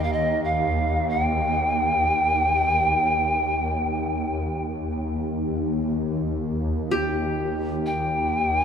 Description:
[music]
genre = world meditative, free-time meditation music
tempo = free time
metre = none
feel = none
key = Eb major pentatonic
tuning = A4 = 442 Hz
[part]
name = mellow polished pan flute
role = melody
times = 0.0-8.6 s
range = Eb5 to G5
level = -23 LUFS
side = equal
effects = ping-pong delay
[part]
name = swarming drone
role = drone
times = 0.0-8.6 s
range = Eb2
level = -25 LUFS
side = equal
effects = built-in reverb
[part]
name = qanun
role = texture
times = 6.9-8.6 s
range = G4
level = -29 LUFS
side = equal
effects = none
[sound]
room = wet cathedral reverb, RT60 6.2 s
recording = none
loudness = -21 LUFS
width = side -7 dB against mid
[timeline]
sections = 0.0-8.6 A section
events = none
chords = none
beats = free time

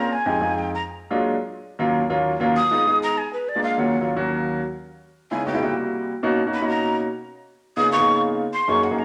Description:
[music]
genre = jazz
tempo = 196 BPM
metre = 4/4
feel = straight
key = unclear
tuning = A4 = 444 Hz
[part]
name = breathy mellow jazz flute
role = melody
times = 0.0-9.0 s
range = Cb5 to Eb6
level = -24 LUFS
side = equal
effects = none
[part]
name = warm grand piano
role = accompaniment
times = 0.0-9.0 s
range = Eb2 to Cb5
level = -24 LUFS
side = equal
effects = none
[sound]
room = wet large studio reverb, RT60 1.1 s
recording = none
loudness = -22 LUFS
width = mono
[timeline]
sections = 0.0-3.8 A section; 3.8-9.0 A section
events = flute solo 0.0-9.0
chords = 0.1 Fm9; 0.7 Bb7b13; 1.3 Ebm9; 2.6 Fm7b5; 3.2 Bb7; 3.8 Ebm9; 5.0 Dbm9; 5.6 C7#11; 6.2 Bmaj9; 7.5 Db13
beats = | 0.11 0.42 0.72 1.03 | 1.33 1.64 1.95 2.25 | 2.56 2.86 3.17 3.47 | 3.78 4.09 4.39 4.70 | 5.00 5.31 5.62 5.92 | 6.23 6.54 6.84 7.15 | 7.45 7.76 8.07 8.37 | 8.68 8.98

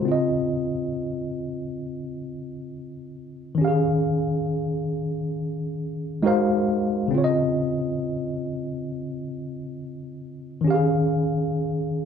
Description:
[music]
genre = R&B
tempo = 68 BPM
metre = 4/4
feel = swing 62% on 16ths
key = unclear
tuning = A4 = 442 Hz
[part]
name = tine electric piano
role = solo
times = 0.0-12.1 s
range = Db3 to F5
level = -23 LUFS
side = equal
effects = overdrive, fast stereo tremolo
[sound]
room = moderate large studio reverb, RT60 0.9 s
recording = band playing live in one room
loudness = -22 LUFS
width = side -7 dB against mid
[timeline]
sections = 0.1-12.1 A section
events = none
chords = 0.1 Dbmaj9; 3.6 Eb9sus4; 6.2 Ab13; 7.1 Dbmaj9; 10.6 Eb9sus4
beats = | 0.06 0.94 1.82 2.71 | 3.59 4.47 5.35 6.23 | 7.12 8.00 8.88 9.76 | 10.65 11.53

